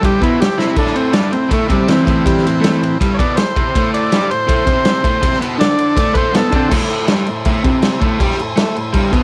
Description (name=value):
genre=garage rock duo or trio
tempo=161 BPM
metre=4/4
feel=straight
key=A minor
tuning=A4 = 441 Hz
part: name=overdriven combo organ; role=melody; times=0.0-6.7 s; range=E3 to D5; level=-19 LUFS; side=equal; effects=none
part: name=combo organ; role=sustained chords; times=0.0-9.2 s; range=E4 to B5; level=-29 LUFS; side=equal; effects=none
part: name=crunchy overdriven guitar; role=riff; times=0.0-9.2 s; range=G2 to A4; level=-20 LUFS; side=equal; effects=none
part: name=raw garage drum kit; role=drums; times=0.0-9.2 s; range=crash cymbal, kick drum, ride cymbal, snare drum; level=-19 LUFS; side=equal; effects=none
room=little or no reverb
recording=none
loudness=-15 LUFS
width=mono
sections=0.0-6.7 A section; 6.7-9.2 B section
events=transistor combo organ solo 0.0-6.7; drum fill 0.6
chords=0.0 Am